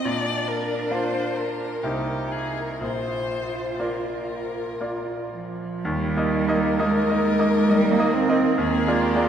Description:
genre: classical, slow romantic movement for piano trio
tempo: 56-72 BPM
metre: 3/4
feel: rubato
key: Eb major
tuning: A4 = 442 Hz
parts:
  - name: warm violin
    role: melody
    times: 0.0-9.3 s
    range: G4 to D5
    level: -28 LUFS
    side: left 4 dB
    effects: none
  - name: rich cello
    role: second line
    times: 0.0-9.3 s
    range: F3 to F4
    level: -25 LUFS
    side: right 3 dB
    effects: none
  - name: bright concert grand piano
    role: accompaniment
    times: 0.0-9.3 s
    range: Bb1 to F5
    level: -25 LUFS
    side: equal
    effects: none
room: wet church reverb, RT60 3.2 s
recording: none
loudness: -21 LUFS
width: side -8 dB against mid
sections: 0.0-5.8 A section; 5.8-9.3 B section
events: none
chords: 0.0 Bb; 1.8 Cm7; 2.8 Bb; 5.8 Eb; 8.6 Bb7/Eb

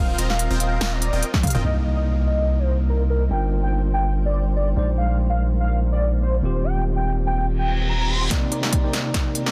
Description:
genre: future bass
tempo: 144 BPM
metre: 4/4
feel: swing 54% on 16ths, half-time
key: Eb major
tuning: A4 = 440 Hz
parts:
  - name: warm velvety synth lead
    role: melody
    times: 0.0-8.2 s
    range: Bb4 to C6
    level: -30 LUFS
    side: equal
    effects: chorus, sidechain pumping, dub echo
  - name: supersaw stab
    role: riff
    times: 0.0-1.6, 8.3-9.5 s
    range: C4 to Bb5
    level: -33 LUFS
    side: equal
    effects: sidechain pumping, low-pass filter
  - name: long sustained 808-style bass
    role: bass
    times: 0.0-8.3 s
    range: Eb1 to C2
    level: -23 LUFS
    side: equal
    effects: sidechain pumping
  - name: big-room dance drum kit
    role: drums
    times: 0.2-1.6, 8.3-9.5 s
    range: hi-hat, snare drum, toms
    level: -29 LUFS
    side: equal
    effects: high-pass filter on hats, high-pass filter on cymbals, high-pass filter on snare, high-pass filter on toms, high-pass filter on room
  - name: electronic kick drum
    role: drums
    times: 1.3-1.5, 8.3-9.2 s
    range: none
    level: -24 LUFS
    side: equal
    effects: none
  - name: tine electric piano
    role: accompaniment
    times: 1.6-9.5 s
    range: Bb2 to Eb5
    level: -30 LUFS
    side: equal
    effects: sidechain pumping
  - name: shimmering ambient pad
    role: sustained chords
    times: 2.9-9.5 s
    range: C3 to D5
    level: -39 LUFS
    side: equal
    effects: chorus, built-in reverb, sidechain pumping
  - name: impact, reverse cymbal and riser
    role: sound effects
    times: 1.7-3.3, 7.6-9.5 s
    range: none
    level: -34 LUFS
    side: equal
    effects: none
room: digital ambience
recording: dense, heavily limited modern master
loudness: -22 LUFS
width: mono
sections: 0.0-1.6 A section; 1.6-8.3 B section; 8.3-9.5 C section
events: drop 0.0-1.6; drum fill 1.3-1.6, 8.3-9.5; impact 1.6-3.3; reverse cymbal 7.6-8.3; build-up 8.3-9.5; filter sweep on supersaw synth 8.3-9.5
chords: 0.0 Eb69; 1.6 Cm7; 3.3 Gm7; 4.8 Bb9sus4; 6.4 Eb69; 8.3 Cm9

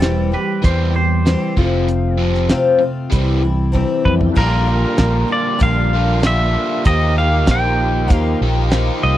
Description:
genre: folk rock and heartland rock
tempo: 96 BPM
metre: 4/4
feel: straight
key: unclear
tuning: A4 = 440 Hz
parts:
  - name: twangy electric guitar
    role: second line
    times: 0.0-2.2 s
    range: A4 to C5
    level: -26 LUFS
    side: right 5 dB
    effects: lush chorus
  - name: picked twelve-string acoustic guitar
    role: accompaniment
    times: 0.0-9.2 s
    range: F2 to G4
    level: -21 LUFS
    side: left 5 dB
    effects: none
  - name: biting overdriven guitar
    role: riff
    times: 0.0-9.2 s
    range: F2 to G4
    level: -22 LUFS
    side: right 2 dB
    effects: none
  - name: fingered electric bass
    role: bass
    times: 0.0-9.2 s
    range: E1 to F2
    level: -17 LUFS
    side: equal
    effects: none
  - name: cloth-damped thuddy drum kit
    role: drums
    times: 0.0-8.9 s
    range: crash cymbal, hi-hat, kick drum, snare drum, toms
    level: -16 LUFS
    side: right 1 dB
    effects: none
  - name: pedal steel guitar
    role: melody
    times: 4.1-9.2 s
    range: Bb4 to G5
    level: -20 LUFS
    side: equal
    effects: none
  - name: tonewheel organ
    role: sustained chords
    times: 4.1-9.2 s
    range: G3 to C5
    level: -30 LUFS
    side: right 1 dB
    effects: slow rotary speaker, overdrive, chorus vibrato
room: little or no reverb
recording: dry, close 1970s-style studio recording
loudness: -14 LUFS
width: side -13 dB against mid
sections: 0.0-4.4 A section; 4.4-9.2 B section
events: drum fill 3.8-4.4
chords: 0.0 C/E; 1.6 F; 3.1 C; 4.4 Bb6; 6.9 Ebadd9

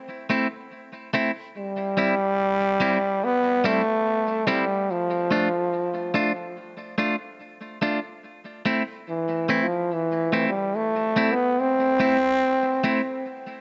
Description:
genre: reggae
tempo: 72 BPM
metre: 4/4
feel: swing 57% on 16ths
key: A minor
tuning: A4 = 441 Hz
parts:
  - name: clean electric guitar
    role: accompaniment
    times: 0.3-13.0 s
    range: G3 to F4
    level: -29 LUFS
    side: equal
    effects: tape echo
  - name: growling trombone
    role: melody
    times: 1.6-13.3 s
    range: E3 to C4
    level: -25 LUFS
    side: equal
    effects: tape echo
room: moderate spring reverb, RT60 1.7 s, small room ambience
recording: nothing above 7.8 kHz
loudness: -24 LUFS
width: mono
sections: 0.0-13.6 A section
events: none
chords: 0.0 Am; 1.6 C; 4.9 Dm; 8.2 Am

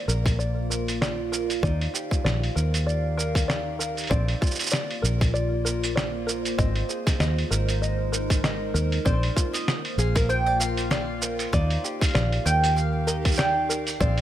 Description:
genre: folktronica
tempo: 97 BPM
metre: 4/4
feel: swing 56% on 16ths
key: Bb mixolydian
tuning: A4 = 438 Hz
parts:
  - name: warbly tape-like pad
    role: sustained chords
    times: 0.0-14.2 s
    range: Eb3 to F5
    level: -32 LUFS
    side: right 1 dB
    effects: chorus, built-in reverb, phaser
  - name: open-back banjo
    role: arpeggios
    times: 0.0-14.2 s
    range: C4 to Eb5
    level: -31 LUFS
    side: left 1 dB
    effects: digital delay
  - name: fingered electric bass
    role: bass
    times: 0.1-14.2 s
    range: Ab1 to Eb2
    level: -26 LUFS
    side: equal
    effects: none
  - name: lo-fi sampler-style drum kit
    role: drums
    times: 0.1-14.2 s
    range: cabasa, hi-hat, snare drum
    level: -28 LUFS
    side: right 1 dB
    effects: none
  - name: electronic kick drum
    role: drums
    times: 0.3-14.1 s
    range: none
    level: -24 LUFS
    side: equal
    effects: overdrive
  - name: mandolin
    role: melody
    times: 9.1-14.2 s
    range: C5 to G5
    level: -28 LUFS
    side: right 2 dB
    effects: digital delay
room: light reverb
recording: none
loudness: -22 LUFS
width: side -12 dB against mid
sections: 0.0-14.2 A section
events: none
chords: 0.0 Bbadd9; 1.6 Ebmaj7; 4.1 Bbadd9; 6.6 Abadd9; 9.1 Bbadd9; 11.5 Ebmaj7

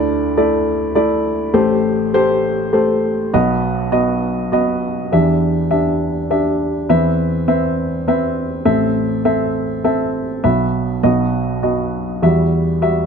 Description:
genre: folk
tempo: 101 BPM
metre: 3/4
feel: straight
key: E minor from 5.1 s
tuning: A4 = 440 Hz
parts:
  - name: dark upright piano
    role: solo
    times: 0.0-13.1 s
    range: A1 to E5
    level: -14 LUFS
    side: equal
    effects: none
room: little or no reverb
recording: close, detailed microphones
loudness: -14 LUFS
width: side -6 dB against mid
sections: 0.0-5.1 A section; 5.1-13.1 B section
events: none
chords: 0.0 Dsus2; 1.6 Am7; 3.3 B; 5.1 Em7; 6.9 Cmaj7/E; 8.7 Am; 10.4 Bsus4; 11.0 B; 12.2 Emadd9

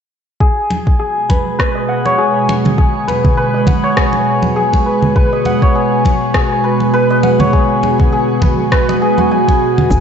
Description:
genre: organic downtempo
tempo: 101 BPM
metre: 4/4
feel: swing 56% on 16ths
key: G# minor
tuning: A4 = 440 Hz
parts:
  - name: bowed-like drone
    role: sustained chords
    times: 1.2-10.0 s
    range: B2 to F#4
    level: -16 LUFS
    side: right 1 dB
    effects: built-in reverb, sidechain pumping, shimmer reverb
  - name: santur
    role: arpeggios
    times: 0.4-10.0 s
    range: F#4 to G#5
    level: -15 LUFS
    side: left 1 dB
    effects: low-pass filter, ping-pong delay, shimmer reverb
  - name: electronic kick drum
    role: drums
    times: 0.4-10.0 s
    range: none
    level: -14 LUFS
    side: equal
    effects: none
  - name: congas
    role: percussion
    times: 0.7-9.9 s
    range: none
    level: -20 LUFS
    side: right 1 dB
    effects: none
  - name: electronic rim click and cabasa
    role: drums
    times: 1.6-10.0 s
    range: none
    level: -21 LUFS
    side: left 1 dB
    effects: none
  - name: woody FM bass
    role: bass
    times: 9.9-10.0 s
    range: G#1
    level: -13 LUFS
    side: equal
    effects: sidechain pumping
room: wet plate reverb, RT60 1.6 s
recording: dreamy mix soaked in reverb, nothing above 7.9 kHz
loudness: -11 LUFS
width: side -7 dB against mid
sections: 0.4-10.0 A section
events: filter sweep on synth drone 0.4-10.0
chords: 0.4 G#m7

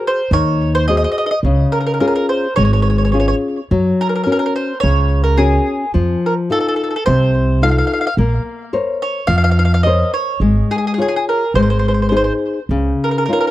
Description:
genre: italian folk, Italian serenade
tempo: 107 BPM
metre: 4/4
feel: swing 54% on 8ths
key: Db major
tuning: A4 = 439 Hz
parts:
  - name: mandolin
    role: melody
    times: 0.0-13.5 s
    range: Ab4 to F5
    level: -18 LUFS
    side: right 1 dB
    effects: tape echo
  - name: nylon-string guitar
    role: accompaniment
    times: 0.0-13.5 s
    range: C3 to Db5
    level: -18 LUFS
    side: left 3 dB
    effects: none
  - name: upright bass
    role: bass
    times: 0.3-12.9 s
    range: Ab1 to Gb2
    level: -15 LUFS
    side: right 1 dB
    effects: none
room: little or no reverb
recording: dry, close 1970s-style studio recording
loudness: -13 LUFS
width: side -15 dB against mid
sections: 0.0-13.5 A section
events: none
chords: 0.0 Ab7; 1.4 Db; 3.7 Gb; 6.0 F7; 8.2 Bbmadd9; 10.4 Db/Ab; 11.6 Ab; 12.7 Dbadd9

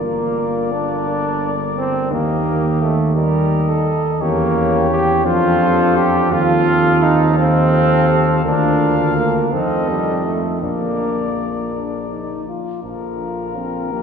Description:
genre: classical, brass quintet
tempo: 56 BPM (dotted quarters)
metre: 6/8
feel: straight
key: Bb major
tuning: A4 = 439 Hz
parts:
  - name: dark trumpet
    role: melody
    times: 0.0-14.0 s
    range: Bb4 to F5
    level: -25 LUFS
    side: left 6 dB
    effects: none
  - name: mellow flugelhorn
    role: second line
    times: 0.0-14.0 s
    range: F4 to Bb4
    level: -24 LUFS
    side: right 3 dB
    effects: none
  - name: clear French horn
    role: accompaniment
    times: 0.0-14.0 s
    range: F3 to Bb4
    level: -26 LUFS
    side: left 5 dB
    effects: none
  - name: clear trombone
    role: accompaniment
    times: 0.0-14.0 s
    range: D3 to G4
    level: -19 LUFS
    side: right 1 dB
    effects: none
  - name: mellow tuba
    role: bass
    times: 0.0-14.0 s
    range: G1 to F2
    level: -20 LUFS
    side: right 1 dB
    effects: none
room: wet cathedral reverb, RT60 4.3 s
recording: recorded in a church or concert hall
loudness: -14 LUFS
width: side -6 dB against mid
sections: 0.0-12.8 A section; 12.8-14.0 A section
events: none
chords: 0.0 Gm; 2.1 Eb; 4.2 Edim7; 5.3 F; 6.3 F7/Eb; 8.5 Bb/D; 9.5 F7; 10.6 Bb

